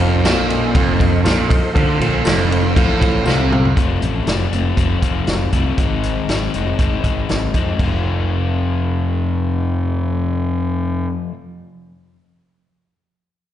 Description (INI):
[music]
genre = classic rock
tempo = 119 BPM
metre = 4/4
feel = straight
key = F mixolydian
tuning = A4 = 445 Hz
[part]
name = reed electric piano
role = accompaniment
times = 0.0-3.7 s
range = F4 to F5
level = -23 LUFS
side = left 2 dB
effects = fast tremolo, slapback echo
[part]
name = tonewheel organ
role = sustained chords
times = 0.0-3.7 s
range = A4 to F5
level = -27 LUFS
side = right 1 dB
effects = slow rotary speaker, overdrive, chorus vibrato
[part]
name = crunchy overdriven guitar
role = riff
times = 0.0-3.8 s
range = F2 to D3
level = -20 LUFS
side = right 9 dB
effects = phaser, slapback echo
[part]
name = overdriven semi-hollow guitar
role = riff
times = 0.0-11.3 s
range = F2 to F4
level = -22 LUFS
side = left 8 dB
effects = none
[part]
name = fuzz fingered electric bass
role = bass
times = 0.0-11.1 s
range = F1 to F2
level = -19 LUFS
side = equal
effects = overdrive
[part]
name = vintage drum kit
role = drums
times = 0.0-7.9 s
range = crash cymbal, hi-hat, kick drum, ride cymbal, snare drum, toms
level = -19 LUFS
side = equal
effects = none
[part]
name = tambourine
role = percussion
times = 0.2-3.4 s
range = none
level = -36 LUFS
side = left 2 dB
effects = none
[sound]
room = little or no reverb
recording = live gig heard through the venue's PA, recital hall reverb, nothing above 10.9 kHz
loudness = -15 LUFS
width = side -11 dB against mid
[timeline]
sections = 0.0-3.8 A section; 3.8-7.8 B section; 7.8-11.8 C section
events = reed electric piano fill 3.0-3.8; drum fill 3.3-3.8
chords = 0.0 F; 5.8 Ab; 7.8 F